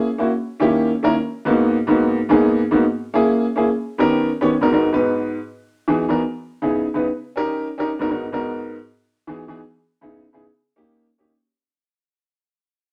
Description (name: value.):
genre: jazz.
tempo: 142 BPM.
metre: 4/4.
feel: straight.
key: G# minor.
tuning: A4 = 441 Hz.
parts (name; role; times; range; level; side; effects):
warm upright piano; solo; 0.0-11.3 s; G#2 to C#5; -19 LUFS; equal; none.
room: wet studio reverb, RT60 0.6 s.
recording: none.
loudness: -20 LUFS.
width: mono.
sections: 0.0-4.5 A section; 4.5-11.3 B section.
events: fade-out 4.5-11.3.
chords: 0.3 D#7b9; 1.1 G#m9; 2.8 A#m7b5; 3.7 D#7b13; 4.5 G#m7; 5.4 Emaj7; 6.2 C#m7; 7.0 D#7; 7.9 G#m7; 8.7 Emaj7; 9.6 C#m7; 10.4 D#7.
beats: 0.29 0.71 | 1.13 1.56 1.98 2.40 | 2.82 3.25 3.67 4.09 | 4.51 4.93 5.36 5.78 | 6.20 6.62 7.05 7.47 | 7.89 8.32 8.74 9.16 | 9.59 10.01 10.44 10.86.